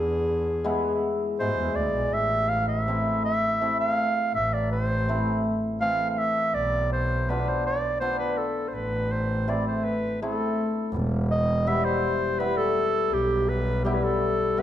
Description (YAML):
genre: klezmer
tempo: 82 BPM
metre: 3/4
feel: straight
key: A harmonic minor, E harmonic minor from 10.9 s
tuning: A4 = 440 Hz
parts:
  - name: warm clarinet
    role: melody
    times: 0.0-14.6 s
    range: G4 to F5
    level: -26 LUFS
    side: right 1 dB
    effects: none
  - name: rich double bass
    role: bass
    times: 0.0-14.4 s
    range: E1 to G#2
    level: -29 LUFS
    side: right 1 dB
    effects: none
  - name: cimbalom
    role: accompaniment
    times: 0.6-14.6 s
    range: B2 to F4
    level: -28 LUFS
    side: left 2 dB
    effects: none
room: wet recital hall reverb, RT60 1.6 s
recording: none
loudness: -23 LUFS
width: side -11 dB against mid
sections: 0.0-10.9 A section; 10.9-14.6 B section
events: none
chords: 0.0 E; 2.1 Am; 6.5 Bdim; 8.8 Am; 10.9 Em